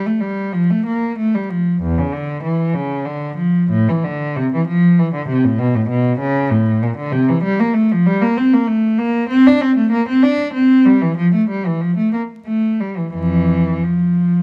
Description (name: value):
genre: classical, baroque-style suite movement for unaccompanied cello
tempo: 86-100 BPM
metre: 3/4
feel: rubato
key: D minor, F major from 7.4 s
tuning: A4 = 441 Hz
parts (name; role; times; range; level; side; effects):
- rich cello; solo; 0.0-14.4 s; E2 to D4; -16 LUFS; equal; none
room: light reverb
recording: dark, warm production, vinyl crackle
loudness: -16 LUFS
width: mono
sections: 0.0-14.4 A section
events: none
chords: none